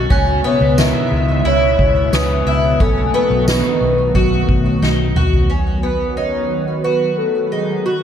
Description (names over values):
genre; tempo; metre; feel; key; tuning
dream pop; 89 BPM; 4/4; straight; B mixolydian; A4 = 441 Hz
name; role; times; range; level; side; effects
hollow soft pad; sustained chords; 0.0-8.0 s; B2 to E5; -21 LUFS; equal; ensemble chorus
fingerpicked twelve-string acoustic guitar; arpeggios; 0.0-8.0 s; D#3 to F#4; -20 LUFS; left 2 dB; wide subtle chorus, digital delay
vintage muted fingered electric bass; bass; 0.0-5.5 s; B1 to C#2; -18 LUFS; equal; none
glockenspiel with hard plastic mallets; texture; 0.0-2.8 s; D#6 to A6; -32 LUFS; left 2 dB; digital delay
soft-mallet drum kit; drums; 0.1-5.5 s; kick drum, ride cymbal, snare drum, tambourine, toms; -19 LUFS; equal; none
soft octave-layered synth lead; melody; 0.5-8.0 s; F#4 to E5; -19 LUFS; right 1 dB; chorus, phaser, digital delay
room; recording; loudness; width
light reverb, studio ambience; dark, warm production; -13 LUFS; side -8 dB against mid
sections
0.0-5.5 A section; 5.5-8.0 B section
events
drum fill 4.8-5.5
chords
0.1 C#m7; 2.8 B7; 5.5 B